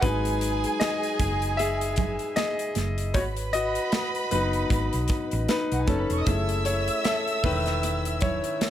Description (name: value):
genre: lush 1970s-style soul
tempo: 77 BPM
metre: 4/4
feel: swing 58% on 16ths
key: unclear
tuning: A4 = 442 Hz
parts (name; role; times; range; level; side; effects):
- warm studio violin section; second line; 0.0-8.7 s; F#4 to E6; -31 LUFS; right 3 dB; none
- clear concert grand piano; accompaniment; 0.0-8.7 s; D#3 to E5; -27 LUFS; left 3 dB; none
- hollow-body short-scale fingered electric bass; bass; 0.0-8.4 s; E1 to B1; -29 LUFS; equal; none
- modern studio drum kit; drums; 0.0-8.7 s; hi-hat, kick drum, snare drum; -29 LUFS; equal; none
- congas; percussion; 0.0-8.7 s; none; -35 LUFS; right 11 dB; none
room: small room ambience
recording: none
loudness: -23 LUFS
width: side -11 dB against mid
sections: 0.0-8.7 A section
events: grand piano solo 0.0-8.7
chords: 0.0 Emaj7; 3.1 G#m7